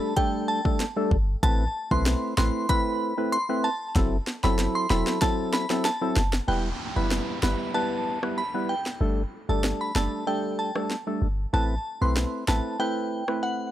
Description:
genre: dancehall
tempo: 95 BPM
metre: 4/4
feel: straight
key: E minor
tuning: A4 = 440 Hz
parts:
  - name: percussive organ stab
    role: accompaniment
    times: 0.0-13.7 s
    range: F#3 to B4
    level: -28 LUFS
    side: equal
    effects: chorus
  - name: glassy synth bell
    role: melody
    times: 0.2-13.5 s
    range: F#5 to C6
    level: -30 LUFS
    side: right 1 dB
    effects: chorus, analog delay
  - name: afro-pop drum kit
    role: drums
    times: 0.2-13.4 s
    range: hi-hat, kick drum, rim click, snare drum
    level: -27 LUFS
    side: equal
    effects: none
  - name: clean 808-style bass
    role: bass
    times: 1.1-12.6 s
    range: E1 to B1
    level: -25 LUFS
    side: equal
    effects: none
  - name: downlifter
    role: sound effects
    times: 6.5-11.5 s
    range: none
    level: -38 LUFS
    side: right 1 dB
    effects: none
room: little or no reverb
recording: dry, gritty hardware recording, transformer saturation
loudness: -23 LUFS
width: side -12 dB against mid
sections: 0.0-6.5 A section; 6.5-13.7 B section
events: drum fill 4.0-6.5; break 6.5-13.7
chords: 0.0 Gsus2; 1.4 Amadd9; 4.0 F#m7b5; 6.5 Em; 9.0 Gsus2; 11.5 Amadd9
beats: 0.17 0.80 | 1.43 2.06 2.69 3.32 | 3.96 4.59 5.22 5.85 | 6.48 7.11 7.75 8.38 | 9.01 9.64 10.27 10.90 | 11.53 12.17 12.80 13.43

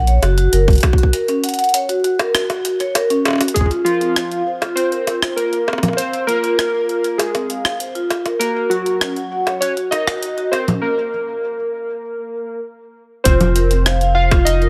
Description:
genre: IDM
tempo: 99 BPM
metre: 4/4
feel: straight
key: unclear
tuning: A4 = 440 Hz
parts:
  - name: round analog bass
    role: bass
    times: 0.0-0.8, 13.3-14.7 s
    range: F1 to Bb1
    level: -17 LUFS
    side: equal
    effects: tube saturation
  - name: vibraphone with medium mallets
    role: arpeggios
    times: 0.1-14.7 s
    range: C4 to Gb5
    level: -22 LUFS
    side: equal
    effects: vintage 12-bit sampler grit, low-pass filter, delay
  - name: jungle sampler-style drum kit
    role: drums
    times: 0.1-14.7 s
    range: bongos, congas, hi-hat, rim click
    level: -23 LUFS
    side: equal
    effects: studio reverb, delay
  - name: electronic kick drum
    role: drums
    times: 0.7-3.7, 13.3-14.4 s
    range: none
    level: -16 LUFS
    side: equal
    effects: studio reverb
  - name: warbly lo-fi synth keys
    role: melody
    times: 3.5-14.7 s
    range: F4 to F5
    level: -22 LUFS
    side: equal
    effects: chorus, delay
room: light reverb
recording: none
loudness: -18 LUFS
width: mono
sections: 0.0-3.6 A section; 3.6-13.3 B section; 13.3-14.7 C section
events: break 1.1-3.6, 10.8-13.3; drum fill 3.3-3.6; filter sweep on vibraphone 3.6-13.3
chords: 0.0 Gb; 3.6 Fm; 8.4 Gb6; 13.3 F7(no3)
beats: 0.53 | 1.13 1.74 2.35 2.95 | 3.56 4.16 4.77 5.38 | 5.98 6.59 7.20 7.80 | 8.41 9.01 9.62 10.22 | 10.83 11.44 12.04 12.65 | 13.26 13.86 14.47

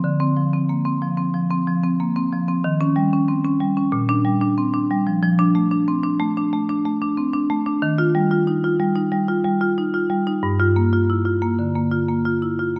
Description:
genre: classical, contemporary piece for solo marimba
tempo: 92 BPM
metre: 4/4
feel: straight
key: F major from 5.2 s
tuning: A4 = 439 Hz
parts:
  - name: marimba with medium hard mallets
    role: solo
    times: 0.0-12.8 s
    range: G2 to F4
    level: -20 LUFS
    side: equal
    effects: none
room: moderate concert hall reverb, RT60 2.1 s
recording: none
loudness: -20 LUFS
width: mono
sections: 0.0-12.8 A section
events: none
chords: 0.0 C9sus4/D; 2.6 Eb7; 3.9 Bb69; 5.2 F6; 7.8 Ebadd9; 10.4 Gm7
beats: | 0.04 0.69 1.34 1.99 | 2.64 3.28 3.92 4.57 | 5.22 5.87 6.52 7.17 | 7.81 8.46 9.12 9.77 | 10.43 11.10 11.75 12.43

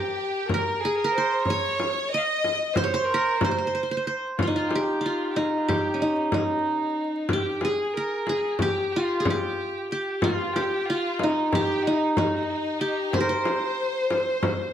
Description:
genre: Turkish makam ensemble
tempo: 185 BPM (eighths)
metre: 9/8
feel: straight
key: C makam kurdi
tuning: A4 = 440 Hz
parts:
  - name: qanun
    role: melody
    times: 0.0-14.7 s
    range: Db4 to Eb5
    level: -25 LUFS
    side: right 1 dB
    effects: none
  - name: dark studio violin section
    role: second line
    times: 0.0-4.1, 10.2-14.7 s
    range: Eb4 to Eb5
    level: -30 LUFS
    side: equal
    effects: none
  - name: dark violin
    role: second line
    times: 0.0-14.7 s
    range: Db4 to F5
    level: -32 LUFS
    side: left 3 dB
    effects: none
  - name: frame drum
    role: percussion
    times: 0.5-14.6 s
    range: none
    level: -28 LUFS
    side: left 2 dB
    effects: none
room: moderate spring reverb, RT60 1.6 s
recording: close, detailed microphones, vinyl crackle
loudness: -22 LUFS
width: side -9 dB against mid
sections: 0.0-4.4 A section; 4.4-14.7 B section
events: none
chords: none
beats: 0.17 0.49 0.81 1.14 | 1.46 1.79 2.11 2.44 2.76 3.08 3.41 3.73 4.06 | 4.38 4.71 5.03 5.36 5.68 6.00 6.33 6.65 6.98 | 7.30 7.62 7.95 8.27 8.60 8.92 9.24 9.57 9.89 | 10.22 10.54 10.87 11.19 11.51 11.84 12.16 12.49 12.81 | 13.14 13.46 13.78 14.11 14.43

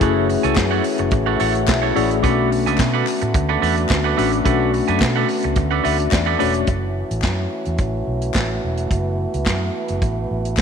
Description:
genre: disco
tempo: 108 BPM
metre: 4/4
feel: straight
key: F# minor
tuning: A4 = 440 Hz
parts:
  - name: electric guitar at the edge of break-up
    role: accompaniment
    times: 0.0-6.6 s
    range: D4 to G#5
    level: -22 LUFS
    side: right 10 dB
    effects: none
  - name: mellow tine electric piano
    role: accompaniment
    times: 0.0-6.7 s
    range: A3 to F#5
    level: -21 LUFS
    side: left 9 dB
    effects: medium stereo tremolo
  - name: dark French horn section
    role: sustained chords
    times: 0.0-10.6 s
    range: D3 to F#4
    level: -25 LUFS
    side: right 1 dB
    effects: none
  - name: vintage muted fingered electric bass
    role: bass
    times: 0.0-10.6 s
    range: E1 to B2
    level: -23 LUFS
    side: equal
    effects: none
  - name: warm soul drum kit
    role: drums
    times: 0.0-10.6 s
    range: handclaps, hi-hat, kick drum, snare drum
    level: -22 LUFS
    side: right 1 dB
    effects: none
  - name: group handclap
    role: percussion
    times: 0.6-10.6 s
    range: none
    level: -34 LUFS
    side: left 11 dB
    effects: none
room: moderate echo chamber reverb, RT60 2.3 s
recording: 1960s-style stereo with parts hard left and right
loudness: -17 LUFS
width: side -7 dB against mid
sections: 0.0-6.7 A section; 6.7-10.6 B section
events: tine electric piano fill 1.1-2.2, 5.6-6.7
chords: 0.0 F#m7; 2.2 Bm7; 6.7 F#m7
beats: | 0.01 0.57 1.12 1.68 | 2.23 2.79 3.34 3.90 | 4.45 5.01 5.57 6.12 | 6.68 7.23 7.79 8.35 | 8.90 9.46 10.02 10.57

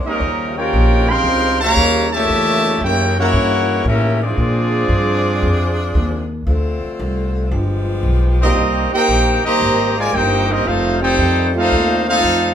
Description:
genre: jazz, big band swing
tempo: 114 BPM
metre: 4/4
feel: swing 68% on 8ths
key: unclear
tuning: A4 = 440 Hz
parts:
  - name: bright saxophone section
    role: sustained chords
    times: 0.0-12.5 s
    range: C3 to Ab4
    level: -26 LUFS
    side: left 2 dB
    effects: none
  - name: upright bass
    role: bass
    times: 0.0-12.5 s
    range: F1 to Bb2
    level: -18 LUFS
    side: equal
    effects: none
  - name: bright trumpet section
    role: melody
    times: 0.1-12.5 s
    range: C4 to C6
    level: -16 LUFS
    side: equal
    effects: none
  - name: warm trombone section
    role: second line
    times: 0.1-12.5 s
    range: Bb2 to Ab4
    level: -20 LUFS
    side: right 2 dB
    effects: none
room: moderate large studio reverb, RT60 1.0 s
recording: band playing live in one room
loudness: -14 LUFS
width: side -9 dB against mid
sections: 0.0-12.5 A section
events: none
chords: 0.2 Eb9; 2.3 Edim7; 4.4 Bb9; 6.5 Dm7; 7.5 G7b9; 8.6 Cm7; 10.7 F9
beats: | 0.20 0.72 1.24 1.76 | 2.29 2.81 3.33 3.86 | 4.38 4.90 5.43 5.95 | 6.47 7.00 7.52 8.05 | 8.57 9.10 9.62 10.14 | 10.67 11.19 11.72 12.24

